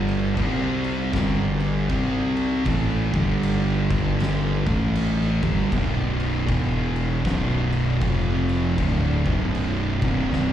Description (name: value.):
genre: stoner and doom metal.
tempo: 78 BPM.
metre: 4/4.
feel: swing 62% on 8ths.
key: B phrygian.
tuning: A4 = 440 Hz.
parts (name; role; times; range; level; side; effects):
thick fuzz guitar; riff; 0.0-10.5 s; B1 to C4; -26 LUFS; left 6 dB; distortion, slapback echo.
thick fuzz guitar; riff; 0.0-10.5 s; B1 to C4; -25 LUFS; right 6 dB; distortion, slapback echo.
fuzz fingered electric bass; bass; 0.0-10.5 s; B0 to C2; -26 LUFS; equal; overdrive.
oversized low-tuned drum kit; drums; 0.1-10.5 s; crash cymbal, kick drum, snare drum; -29 LUFS; equal; none.
room: light reverb.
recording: live gig heard through the venue's PA, recital hall reverb.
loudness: -20 LUFS.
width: side -10 dB against mid.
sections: 0.0-10.5 A section.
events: drum fill 10.3.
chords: 0.4 C5; 1.1 G5; 1.9 C5; 2.7 G5; 4.6 A5; 5.3 G5; 5.7 B5; 6.5 E5; 7.3 B5; 8.0 F5; 8.8 Bm.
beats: 0.37 1.13 1.90 | 2.66 3.43 4.19 4.96 | 5.72 6.49 7.25 8.02 | 8.79 9.55 10.32.